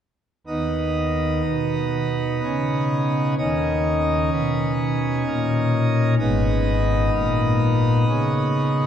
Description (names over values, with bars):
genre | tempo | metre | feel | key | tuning
classical, chorale-style piece for pipe organ | 63 BPM | 3/4 | rubato | unclear | A4 = 439 Hz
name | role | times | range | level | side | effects
pipe organ, plenum | solo | 0.5-8.9 s | G#1 to D#4 | -19 LUFS | equal | none
room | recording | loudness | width
wet cathedral reverb, RT60 4.7 s | dark, warm production | -19 LUFS | side -9 dB against mid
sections
0.5-8.9 A section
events
none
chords
0.5 Badd9/D#; 3.4 D#5; 6.2 G#m